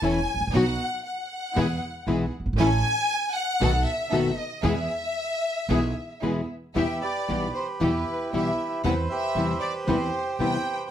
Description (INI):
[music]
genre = tango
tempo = 116 BPM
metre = 4/4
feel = rubato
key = E major, E minor from 6.8 s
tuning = A4 = 440 Hz
[part]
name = warm studio violin section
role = second line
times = 0.0-10.7 s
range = B4 to G#5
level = -29 LUFS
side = left 1 dB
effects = none
[part]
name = nylon-string guitar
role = accompaniment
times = 0.0-10.6 s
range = B2 to F#4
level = -26 LUFS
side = left 3 dB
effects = none
[part]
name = rich chamber string section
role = stabs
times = 0.0-10.6 s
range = B3 to B4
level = -32 LUFS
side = right 2 dB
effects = none
[part]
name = upright bass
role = bass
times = 0.0-10.6 s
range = E1 to E2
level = -28 LUFS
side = right 2 dB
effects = none
[part]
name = bandoneon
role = melody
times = 6.8-10.9 s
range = E4 to G5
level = -28 LUFS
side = right 3 dB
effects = none
[sound]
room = moderate large studio reverb, RT60 0.8 s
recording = none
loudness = -23 LUFS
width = side -10 dB against mid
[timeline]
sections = 0.0-6.8 A section; 6.8-10.9 B section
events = violin section solo 0.0-6.8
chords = 0.0 A; 0.5 B; 1.6 E; 2.6 A; 3.6 B7; 4.7 E; 6.8 Em; 8.8 Cmaj7/E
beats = 0.02 | 0.54 1.05 1.57 2.08 | 2.59 3.11 3.62 4.14 | 4.66 5.18 5.70 6.23 | 6.76 7.29 7.81 8.33 | 8.85 9.36 9.87 10.39